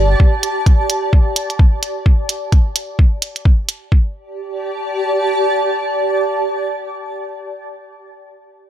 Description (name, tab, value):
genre	minimal techno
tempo	129 BPM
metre	4/4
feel	swing 59% on 16ths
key	unclear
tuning	A4 = 435 Hz
part	granular cloud pad	texture	0.0-7.3 s	G4 to A5	-19 LUFS	right 1 dB	built-in reverb, analog chorus, sidechain pumping
part	electronic kick drum	drums	0.2-4.0 s	none	-10 LUFS	equal	none
part	electronic hi-hat	drums	0.4-3.8 s	none	-19 LUFS	right 2 dB	none
room	moderate plate reverb, RT60 1.3 s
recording	dreamy mix soaked in reverb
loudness	-14 LUFS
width	side -11 dB against mid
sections	0.0-3.9 A section; 3.9-7.6 B section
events	none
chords	0.0 G5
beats	| 0.20 0.66 1.13 1.59 | 2.06 2.52 2.99 3.45 | 3.92 4.38 4.85 5.31 | 5.78 6.25 6.71 7.17